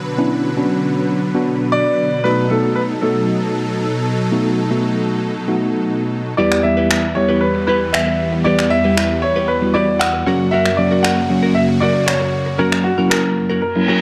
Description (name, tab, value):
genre	dance-pop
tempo	116 BPM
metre	4/4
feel	straight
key	unclear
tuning	A4 = 440 Hz
part	supersaw chords	sustained chords	0.0-14.0 s	E2 to B4	-23 LUFS	equal	none
part	tine electric piano	accompaniment	0.2-14.0 s	F#3 to G4	-21 LUFS	equal	none
part	warm concert grand piano	melody	1.7-14.0 s	F#4 to F#5	-21 LUFS	equal	none
part	direct-recorded clean electric guitar	riff	6.4-14.0 s	C#4 to B4	-26 LUFS	equal	lush chorus
part	electronic finger snaps	drums	6.5-13.2 s	none	-23 LUFS	equal	overdrive
part	reverse cymbal	sound effects	13.7-14.0 s	none	-22 LUFS	equal	none
room	light reverb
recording	dark, warm production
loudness	-17 LUFS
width	mono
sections	0.0-14.0 A section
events	reverse cymbal 13.7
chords	0.0 Bmadd9; 2.2 B7; 6.4 Em; 10.3 F#